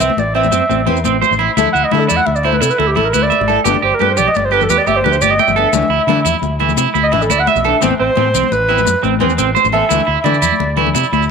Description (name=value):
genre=highlife guitar band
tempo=115 BPM (dotted quarters)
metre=12/8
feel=straight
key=unclear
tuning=A4 = 437 Hz
part: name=mellow clarinet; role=melody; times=0.0-10.8 s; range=G4 to F#5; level=-17 LUFS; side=right 1 dB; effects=tape echo
part: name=electric guitar at the edge of break-up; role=arpeggios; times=0.0-11.2 s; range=C4 to G5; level=-15 LUFS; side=right 9 dB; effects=none
part: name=fingered electric bass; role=bass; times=0.0-11.3 s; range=G1 to D3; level=-20 LUFS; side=equal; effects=none
part: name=congas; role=percussion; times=0.0-11.3 s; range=none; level=-21 LUFS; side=left 17 dB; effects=none
part: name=maracas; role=percussion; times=0.0-11.3 s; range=none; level=-24 LUFS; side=left 20 dB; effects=none
part: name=picked steel-string acoustic guitar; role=accompaniment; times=0.3-10.9 s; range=E3 to B4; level=-21 LUFS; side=left 13 dB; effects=none
room=wet spring reverb, RT60 1.2 s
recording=1960s-style stereo with parts hard left and right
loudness=-11 LUFS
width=side -6 dB against mid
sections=0.0-11.3 A section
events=clarinet solo 0.0-11.3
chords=0.0 Amadd9; 1.6 Dsus2; 3.7 Gadd9; 5.7 Dsus2; 7.8 Amadd9; 9.9 Dsus2